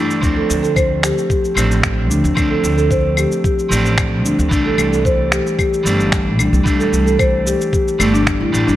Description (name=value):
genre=organic downtempo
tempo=112 BPM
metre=4/4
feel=straight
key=D minor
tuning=A4 = 440 Hz
part: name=electric guitar at the edge of break-up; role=accompaniment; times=0.0-8.8 s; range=E3 to D4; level=-20 LUFS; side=right 2 dB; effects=spring reverb, sidechain pumping, digital delay
part: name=marimba with soft mallets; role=arpeggios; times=0.0-8.8 s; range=A3 to C5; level=-18 LUFS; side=left 1 dB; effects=digital delay
part: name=electronic shaker, claves and finger snaps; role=drums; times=0.1-8.8 s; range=none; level=-22 LUFS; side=left 2 dB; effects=none
part: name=upright bass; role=bass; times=0.2-8.8 s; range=G1 to D2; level=-18 LUFS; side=equal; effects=sidechain pumping
part: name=electronic kick drum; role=drums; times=0.2-8.4 s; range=none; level=-19 LUFS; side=equal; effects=none
room=light reverb, studio ambience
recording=none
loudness=-13 LUFS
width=side -13 dB against mid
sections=0.0-8.8 A section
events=none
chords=0.2 Dm7; 4.5 C6